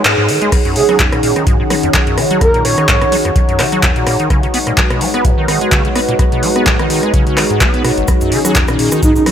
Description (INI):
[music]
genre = acid house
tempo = 127 BPM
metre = 4/4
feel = swing 55% on 16ths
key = Eb minor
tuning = A4 = 440 Hz
[part]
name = dark analog pad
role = sustained chords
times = 0.0-9.3 s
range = Eb3 to Cb5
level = -21 LUFS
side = equal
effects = chorus, sidechain pumping
[part]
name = acid bass, square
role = riff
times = 0.0-9.3 s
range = Ab1 to Cb4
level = -18 LUFS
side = equal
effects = overdrive, ensemble chorus, sidechain pumping, dub echo
[part]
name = booming analog drum machine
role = drums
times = 0.0-9.3 s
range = crash cymbal, handclaps, hi-hat, rim click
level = -16 LUFS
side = left 1 dB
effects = overdrive
[part]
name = warbly tape-like pad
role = texture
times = 0.0-9.3 s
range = Eb4 to Gb5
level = -18 LUFS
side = right 1 dB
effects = chorus, built-in reverb, phaser, sidechain pumping
[part]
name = electronic kick drum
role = drums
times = 0.5-9.1 s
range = none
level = -15 LUFS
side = equal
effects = none
[part]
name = breathy flute-like synth lead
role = melody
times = 0.8-3.1, 8.3-9.2 s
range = Eb4 to Db5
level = -17 LUFS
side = right 2 dB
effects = lush chorus, tape echo
[part]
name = cabasa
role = percussion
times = 8.1-9.2 s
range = none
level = -24 LUFS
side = left 1 dB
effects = none
[sound]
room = light reverb, digital ambience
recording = none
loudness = -10 LUFS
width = side -9 dB against mid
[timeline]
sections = 0.5-9.3 A section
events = break 0.0-0.5; band accent 0.1; drop 0.5-9.3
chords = 0.0 Abm7; 0.5 Ebm7; 4.3 Abm7; 8.1 Ebm7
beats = 0.05 | 0.52 0.99 1.47 1.94 | 2.41 2.88 3.36 3.83 | 4.30 4.77 5.25 5.72 | 6.19 6.66 7.14 7.61 | 8.08 8.55 9.03